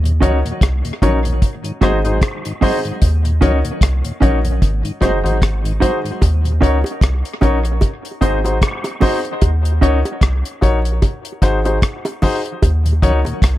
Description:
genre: dub reggae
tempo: 75 BPM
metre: 4/4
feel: swing 57% on 16ths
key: Eb dorian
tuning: A4 = 440 Hz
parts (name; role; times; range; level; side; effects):
- mellow tonewheel organ; accompaniment; 0.0-6.5, 12.9-13.3 s; Eb2 to Db4; -26 LUFS; left 1 dB; slow rotary speaker, tape echo
- soft dub sub bass; bass; 0.0-13.6 s; Gb1 to Eb2; -16 LUFS; equal; none
- deep reggae drum kit; drums; 0.1-13.6 s; hi-hat, kick drum, rim click; -16 LUFS; equal; none
- mellow electric guitar; accompaniment; 0.2-10.0 s; C4 to Eb5; -23 LUFS; right 3 dB; tape echo
- dark baby grand piano; stabs; 0.2-13.2 s; Eb4 to Db5; -21 LUFS; left 3 dB; tape echo
- bongos; percussion; 6.2-13.4 s; none; -26 LUFS; right 2 dB; tape echo
room: light reverb, studio reverb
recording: none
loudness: -14 LUFS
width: side -15 dB against mid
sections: 0.0-13.6 A section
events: break 0.0-6.2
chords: 0.0 Ebm7; 1.4 Ab7; 3.0 Ebm7; 4.6 Ab7; 6.2 Ebm7; 7.8 Ab7; 9.4 Ebm7; 11.0 Ab7; 12.6 Ebm7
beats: 0.61 1.42 2.21 | 3.02 3.81 4.62 5.42 | 6.21 7.02 7.82 8.62 | 9.42 10.22 11.02 11.82 | 12.62 13.42

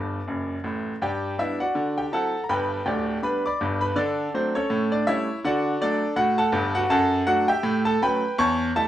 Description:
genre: jazz, stride piano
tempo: 163 BPM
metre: 4/4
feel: swing 58% on 8ths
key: G major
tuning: A4 = 439 Hz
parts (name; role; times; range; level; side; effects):
- bright grand piano; solo; 0.0-8.9 s; D1 to D6; -22 LUFS; equal; none
room: wet club reverb, RT60 0.6 s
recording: heard from further back in the room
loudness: -22 LUFS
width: side -12 dB against mid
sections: 0.0-1.0 A section; 1.0-8.9 B section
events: grand piano fill 0.0-1.0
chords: 0.0 D; 1.0 G; 1.8 D9; 2.5 G; 4.0 D; 4.7 A7; 5.4 D; 6.9 D/F#; 7.6 A13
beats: 0.29 0.66 | 1.03 1.40 1.76 2.13 | 2.50 2.87 3.24 3.60 | 3.97 4.34 4.71 5.08 | 5.44 5.81 6.18 6.55 | 6.91 7.28 7.65 8.02 | 8.38 8.75

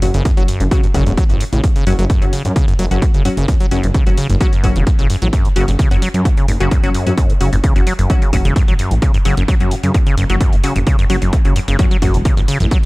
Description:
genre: driving peak-time techno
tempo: 130 BPM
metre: 4/4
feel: straight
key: F# phrygian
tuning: A4 = 441 Hz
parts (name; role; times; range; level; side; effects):
- acid bass, saw; riff; 0.0-12.8 s; F#2 to F#3; -20 LUFS; equal; cassette tape, sidechain pumping, tape echo
- wavetable chord stab; stabs; 0.0-12.1 s; F#3 to F#4; -24 LUFS; left 2 dB; sidechain pumping, tape echo
- detuned saw bass; bass; 0.0-12.7 s; E1 to F#2; -17 LUFS; equal; tube saturation, sidechain pumping
- electronic hi-hat; drums; 0.0-12.8 s; none; -31 LUFS; equal; overdrive, sidechain pumping on hats, small room ambience
- electronic kick drum; drums; 0.3-12.8 s; none; -14 LUFS; equal; overdrive, small room ambience
room: little or no reverb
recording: dry, gritty hardware recording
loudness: -12 LUFS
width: side -22 dB against mid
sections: 0.0-12.9 A section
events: none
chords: 0.0 F#5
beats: 0.25 0.71 1.18 | 1.64 2.10 2.56 3.02 | 3.48 3.94 4.41 4.87 | 5.33 5.79 6.25 6.71 | 7.17 7.64 8.10 8.56 | 9.02 9.48 9.94 10.41 | 10.87 11.33 11.79 12.25 | 12.71

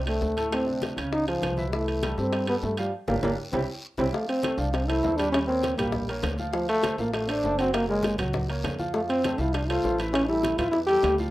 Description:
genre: Afro-Cuban jazz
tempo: 200 BPM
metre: 4/4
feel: straight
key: C major, F major from 4.1 s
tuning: A4 = 440 Hz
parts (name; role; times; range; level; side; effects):
- upright bass; bass; 0.0-11.3 s; Gb1 to G2; -32 LUFS; equal; none
- dark trombone; melody; 0.1-11.2 s; F3 to G4; -26 LUFS; equal; none
- warm grand piano; accompaniment; 0.1-11.3 s; A2 to G5; -32 LUFS; equal; none
- bongos; percussion; 0.1-11.2 s; none; -35 LUFS; left 4 dB; none
- congas; percussion; 0.1-11.3 s; none; -38 LUFS; left 1 dB; none
- timbales; percussion; 0.1-11.2 s; none; -36 LUFS; right 4 dB; none
- guiro; percussion; 0.2-11.3 s; none; -46 LUFS; left 1 dB; none
room: wet small room reverb, RT60 0.5 s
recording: rough home demo mix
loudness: -24 LUFS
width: side -16 dB against mid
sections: 0.0-4.1 A section; 4.1-11.3 B section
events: band accent 2.9-4.1; drum fill 3.7-4.1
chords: 0.0 F6 (rootless); 0.5 D5; 1.1 Db; 1.7 C6; 2.9 Gm7; 3.5 C; 4.1 Fmaj9; 5.3 Eb13; 6.5 Dm7; 7.7 Gbadd9; 8.9 F; 10.1 A5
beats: 0.22 | 0.52 0.82 1.12 1.42 | 1.73 2.03 2.33 2.63 | 2.93 3.23 3.53 3.83 | 4.13 4.43 4.74 5.04 | 5.34 5.64 5.94 6.24 | 6.54 6.84 7.14 7.44 | 7.74 8.04 8.34 8.64 | 8.94 9.24 9.54 9.84 | 10.14 10.44 10.74 11.04

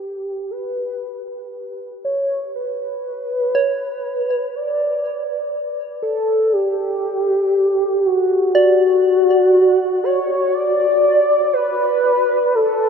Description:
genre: ambient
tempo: 60 BPM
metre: 4/4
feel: straight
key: unclear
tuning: A4 = 440 Hz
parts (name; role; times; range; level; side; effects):
- warm velvety synth lead; melody; 0.0-12.9 s; F#4 to D5; -16 LUFS; equal; chorus, ping-pong delay
- soft synth bell; arpeggios; 3.5-10.6 s; C#5 to D5; -23 LUFS; right 3 dB; chorus, ping-pong delay
room: wet huge ambient reverb, RT60 8.8 s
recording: none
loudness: -16 LUFS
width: side -6 dB against mid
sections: 0.0-12.9 A section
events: fade-in on synth bell 0.0-12.9; fade-in on soft synth lead 0.0-12.9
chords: 0.0 G (rootless); 10.5 N.C.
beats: 0.54 1.54 | 2.54 3.54 4.54 5.54 | 6.54 7.54 8.54 9.54 | 10.54 11.54 12.54

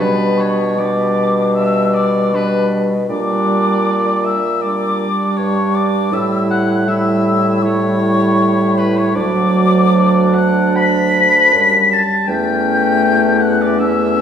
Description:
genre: classical, slow romantic movement for wind quintet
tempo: 79 BPM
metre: 4/4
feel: rubato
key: unclear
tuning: A4 = 440 Hz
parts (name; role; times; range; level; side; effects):
- mellow hollow silver concert flute; melody; 0.0-14.2 s; B5 to B6; -18 LUFS; left 4 dB; none
- clear oboe; second line; 0.0-14.2 s; B4 to B5; -22 LUFS; left 1 dB; none
- mellow French horn; accompaniment; 0.0-14.2 s; F#3 to A3; -17 LUFS; equal; none
- warm clarinet; accompaniment; 0.0-14.2 s; C#4 to E4; -23 LUFS; right 4 dB; none
- clear bassoon; bass; 0.0-14.2 s; D2 to B2; -18 LUFS; equal; none
room: wet recital hall reverb, RT60 1.5 s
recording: heard from further back in the room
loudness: -12 LUFS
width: side -8 dB against mid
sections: 0.0-14.2 A section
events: none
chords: 0.0 G/B; 3.1 Gm/Bb; 6.1 A7; 9.1 D; 12.3 A7/E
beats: 0.78 1.55 2.32 | 3.09 3.85 4.61 5.37 | 6.12 6.88 7.63 8.39 | 9.15 9.93 10.76 11.53 | 12.28 13.04 13.80

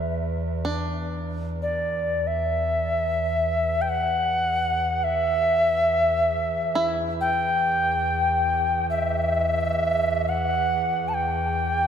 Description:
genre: world meditative, free-time meditation music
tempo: free time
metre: none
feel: none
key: E minor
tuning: A4 = 441 Hz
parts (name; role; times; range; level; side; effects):
- evolving wavetable pad; drone; 0.0-11.9 s; E2; -29 LUFS; right 1 dB; chorus, built-in reverb
- bluegrass banjo; texture; 0.6-11.9 s; D4 to E4; -32 LUFS; right 2 dB; none
- bright Native American-style cedar flute; melody; 1.6-11.9 s; D5 to A5; -22 LUFS; equal; ping-pong delay
room: wet lush hall reverb, RT60 3.0 s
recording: none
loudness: -21 LUFS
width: side -8 dB against mid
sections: 0.0-11.9 A section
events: none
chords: none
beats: free time

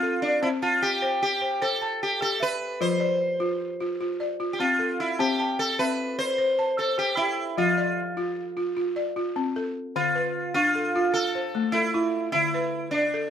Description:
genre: west african traditional, West African string and xylophone music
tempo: 101 BPM (dotted quarters)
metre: 12/8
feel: straight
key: C major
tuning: A4 = 444 Hz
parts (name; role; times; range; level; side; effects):
- sitar; melody; 0.0-13.3 s; D4 to C5; -25 LUFS; right 1 dB; slapback echo
- balafon; arpeggios; 0.0-13.3 s; D3 to A5; -28 LUFS; left 2 dB; none
room: light reverb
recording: none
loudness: -23 LUFS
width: side -9 dB against mid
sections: 0.0-10.0 A section; 10.0-13.3 B section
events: none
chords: 0.4 C; 2.8 F; 5.2 C; 7.6 F; 10.0 Dm; 11.1 Am; 12.3 D5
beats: | 0.43 1.02 1.62 2.22 | 2.81 3.41 4.00 4.60 | 5.20 5.79 6.39 6.98 | 7.58 8.17 8.77 9.36 | 9.96 10.55 11.15 11.74 | 12.34 12.93

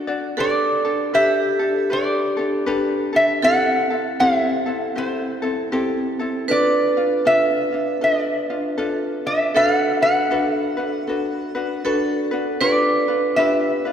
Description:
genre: Hawaiian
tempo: 78 BPM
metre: 4/4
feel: swing 62% on 8ths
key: G major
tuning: A4 = 440 Hz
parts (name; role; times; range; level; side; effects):
- lap resonator guitar; melody; 0.0-13.9 s; C5 to F#5; -20 LUFS; equal; none
- ukulele; accompaniment; 0.0-13.9 s; C4 to D5; -23 LUFS; left 2 dB; none
- vibraphone with hard mallets; second line; 0.4-13.9 s; G4 to B4; -23 LUFS; right 2 dB; none
room: wet church reverb, RT60 2.7 s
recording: recorded in a church or concert hall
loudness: -17 LUFS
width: side -8 dB against mid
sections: 0.0-13.9 A section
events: none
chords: 0.4 Gadd9; 3.4 Am7; 6.5 F6; 9.5 D6; 12.6 G7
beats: | 0.37 1.14 1.90 2.66 | 3.43 4.19 4.96 5.72 | 6.49 7.25 8.02 8.78 | 9.55 10.31 11.08 11.84 | 12.61 13.37

